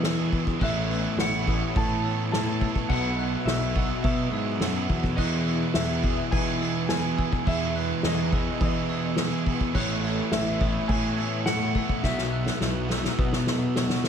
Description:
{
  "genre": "post-rock",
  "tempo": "105 BPM",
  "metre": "4/4",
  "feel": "straight",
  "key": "E major",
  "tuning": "A4 = 440 Hz",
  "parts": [
    { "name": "clean lap steel guitar", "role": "melody", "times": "0.0-13.7 s", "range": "C#5 to A5", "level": "-33 LUFS", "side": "right 1 dB", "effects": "ping-pong delay" },
    { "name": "warm analog pad", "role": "sustained chords", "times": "0.0-14.1 s", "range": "E3 to F#5", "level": "-40 LUFS", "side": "right 2 dB", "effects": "none" },
    { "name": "clean electric guitar", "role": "arpeggios", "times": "0.0-14.1 s", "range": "E2 to G#4", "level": "-37 LUFS", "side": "left 5 dB", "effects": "none" },
    { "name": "glockenspiel with soft plastic mallets", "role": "arpeggios", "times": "0.0-14.1 s", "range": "D#6 to F#6", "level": "-40 LUFS", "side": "right 6 dB", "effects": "ping-pong delay" },
    { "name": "overdriven electric guitar", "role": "riff", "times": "0.0-14.1 s", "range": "E2 to B3", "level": "-32 LUFS", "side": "left 11 dB", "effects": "ensemble chorus" },
    { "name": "thick fuzz guitar", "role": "riff", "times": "0.0-14.1 s", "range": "E2 to B3", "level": "-32 LUFS", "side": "right 11 dB", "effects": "distortion" },
    { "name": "fuzz picked electric bass", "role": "bass", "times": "0.0-14.1 s", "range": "A1 to E3", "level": "-29 LUFS", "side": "equal", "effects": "overdrive" },
    { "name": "soft-mallet drum kit", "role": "drums", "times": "0.0-14.1 s", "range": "crash cymbal, kick drum, snare drum", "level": "-28 LUFS", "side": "equal", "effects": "none" }
  ],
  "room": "light reverb, studio reverb",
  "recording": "none",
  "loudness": "-23 LUFS",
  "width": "side -8 dB against mid",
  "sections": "0.0-14.1 A section",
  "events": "drum fill 12.0-14.1",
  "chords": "0.0 Emaj7; 0.6 Aadd9; 2.9 Bsus4; 5.2 Emaj7; 9.8 Aadd9; 12.0 Bsus4"
}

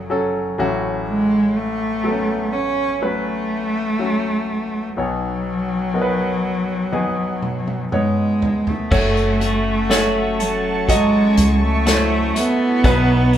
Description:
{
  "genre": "pop ballad",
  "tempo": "61 BPM",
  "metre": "4/4",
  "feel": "straight",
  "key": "unclear",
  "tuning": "A4 = 440 Hz",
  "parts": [
    { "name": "warm cello", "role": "melody", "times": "0.0-13.4 s", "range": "F#3 to C#4", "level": "-20 LUFS", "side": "right 1 dB", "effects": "none" },
    { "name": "clear concert grand piano", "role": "accompaniment", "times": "0.0-13.4 s", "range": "F#1 to D#5", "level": "-22 LUFS", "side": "equal", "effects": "none" },
    { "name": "unplugged drum kit", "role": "drums", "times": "6.9-13.4 s", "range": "crash cymbal, hi-hat, kick drum, snare drum, toms", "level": "-22 LUFS", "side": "left 1 dB", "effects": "none" },
    { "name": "lush unison pad", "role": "sustained chords", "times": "9.4-13.4 s", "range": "E4 to D#6", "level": "-27 LUFS", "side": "right 2 dB", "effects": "chorus" },
    { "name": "twelve-string electric guitar", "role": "arpeggios", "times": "8.9-13.4 s", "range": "B2 to F#4", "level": "-24 LUFS", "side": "left 2 dB", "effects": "none" },
    { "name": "woody fretless electric bass", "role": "bass", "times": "8.9-13.4 s", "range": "F#1 to C#2", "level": "-21 LUFS", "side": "equal", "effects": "none" }
  ],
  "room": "moderate large studio reverb, RT60 0.8 s",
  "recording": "band playing live in one room",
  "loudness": "-17 LUFS",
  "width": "side -10 dB against mid",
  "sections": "0.0-8.9 A section; 8.9-13.4 B section",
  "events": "drum fill 6.9-8.9",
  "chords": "0.0 F#m; 0.6 A6; 5.0 Badd9; 8.9 F#m; 12.8 B"
}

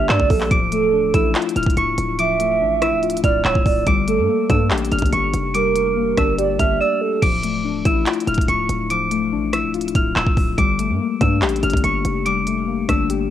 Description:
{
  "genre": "hip hop, drill",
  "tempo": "143 BPM",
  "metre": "4/4",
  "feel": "half-time",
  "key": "D harmonic minor",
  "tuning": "A4 = 438 Hz",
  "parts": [
    { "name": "celesta", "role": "melody", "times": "0.0-13.1 s", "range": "C#6 to F7", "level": "-23 LUFS", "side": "equal", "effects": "low-pass filter, cassette tape, tape echo" },
    { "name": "hollow clarinet-like synth lead", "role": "second line", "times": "0.0-7.2 s", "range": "A4 to E5", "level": "-20 LUFS", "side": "right 8 dB", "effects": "chorus, cassette tape, tape echo" },
    { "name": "muted felt-like synth keys", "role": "accompaniment", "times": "0.0-13.3 s", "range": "F3 to G4", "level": "-22 LUFS", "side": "left 9 dB", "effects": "chorus, low-pass filter, cassette tape" },
    { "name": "hard-hitting 808-style bass", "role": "bass", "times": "0.0-13.3 s", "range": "C#1 to G2", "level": "-24 LUFS", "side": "equal", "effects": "none" },
    { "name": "drill drum kit", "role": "drums", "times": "0.1-13.2 s", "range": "crash cymbal, handclaps, hi-hat, kick drum, rim click", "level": "-21 LUFS", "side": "equal", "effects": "none" }
  ],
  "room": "little or no reverb",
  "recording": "home recording on cassette",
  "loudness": "-16 LUFS",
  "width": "side -11 dB against mid",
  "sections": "0.0-7.2 A section; 7.2-13.3 A section",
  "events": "drums muted 6.8-7.2",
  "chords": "0.0 Gmadd9; 0.5 Dmadd9; 3.9 Gmadd9; 7.2 Dmadd9; 10.6 Gmadd9"
}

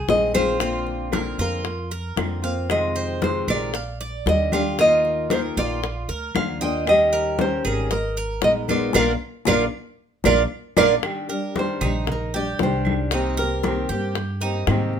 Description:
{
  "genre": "latin, Cuban son and guajira",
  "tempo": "115 BPM",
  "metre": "4/4",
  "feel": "straight",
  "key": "Eb major",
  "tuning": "A4 = 440 Hz",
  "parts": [
    { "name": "Cuban tres", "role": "arpeggios", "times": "0.0-14.9 s", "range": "Eb4 to F5", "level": "-28 LUFS", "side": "right 8 dB", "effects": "none" },
    { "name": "upright bass", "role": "bass", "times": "0.0-15.0 s", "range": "Ab1 to Ab2", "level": "-28 LUFS", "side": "right 1 dB", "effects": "none" },
    { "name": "nylon-string guitar", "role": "melody", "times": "0.1-14.1 s", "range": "Bb4 to G5", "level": "-22 LUFS", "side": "equal", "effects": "none" },
    { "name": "fingerpicked steel-string acoustic guitar", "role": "accompaniment", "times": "0.1-15.0 s", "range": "C3 to Bb4", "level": "-26 LUFS", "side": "left 2 dB", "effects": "none" },
    { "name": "bongos", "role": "percussion", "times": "0.1-14.9 s", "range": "none", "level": "-29 LUFS", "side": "left 7 dB", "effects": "none" },
    { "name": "congas", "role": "percussion", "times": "0.1-15.0 s", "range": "none", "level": "-29 LUFS", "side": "left 4 dB", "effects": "none" },
    { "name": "claves", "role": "percussion", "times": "0.3-14.9 s", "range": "none", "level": "-32 LUFS", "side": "right 6 dB", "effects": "none" }
  ],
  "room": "light reverb",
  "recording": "minimal, uncompressed stereo recording",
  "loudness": "-20 LUFS",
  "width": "side -8 dB against mid",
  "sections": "0.0-11.0 A section; 11.0-15.0 B section",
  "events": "band accent 8.9-11.0; drum fill 10.8; nylon-string guitar solo 11.0-15.0",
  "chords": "0.0 Ab; 0.6 Bbadd9; 2.7 Fm7; 3.7 Bb6; 4.8 Ebsus2; 5.8 Bb; 6.9 Eb7; 7.9 Abmadd9; 8.9 Bb; 11.0 Ebmaj7; 13.1 Cm7"
}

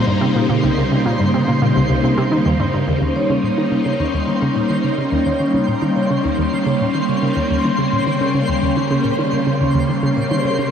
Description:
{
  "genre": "ambient",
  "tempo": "107 BPM",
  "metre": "4/4",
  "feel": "straight",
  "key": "unclear",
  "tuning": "A4 = 440 Hz",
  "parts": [
    { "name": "phased string machine", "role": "sustained chords", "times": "0.0-10.7 s", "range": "Db3 to Eb4", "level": "-18 LUFS", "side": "equal", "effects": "ensemble chorus, phaser" },
    { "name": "twinkling granular texture", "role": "texture", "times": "0.0-10.7 s", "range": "C4 to C6", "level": "-25 LUFS", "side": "equal", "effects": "built-in reverb" },
    { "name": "analog pluck", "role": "riff", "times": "0.1-10.7 s", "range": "C2 to Eb3", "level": "-21 LUFS", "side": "equal", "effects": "chorus, cassette tape, analog delay" },
    { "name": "vibraphone with soft mallets", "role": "arpeggios", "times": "3.0-10.7 s", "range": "Db4 to Db5", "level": "-21 LUFS", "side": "left 2 dB", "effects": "auto-pan, analog delay" }
  ],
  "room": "wet huge ambient reverb, RT60 6.9 s",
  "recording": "cassette tape",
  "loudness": "-15 LUFS",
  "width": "side -8 dB against mid",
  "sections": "0.0-3.0 A section; 3.0-10.7 B section",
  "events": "filter sweep on synth arpeggio sound 3.0-10.7",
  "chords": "0.0 Cm; 3.0 Eb"
}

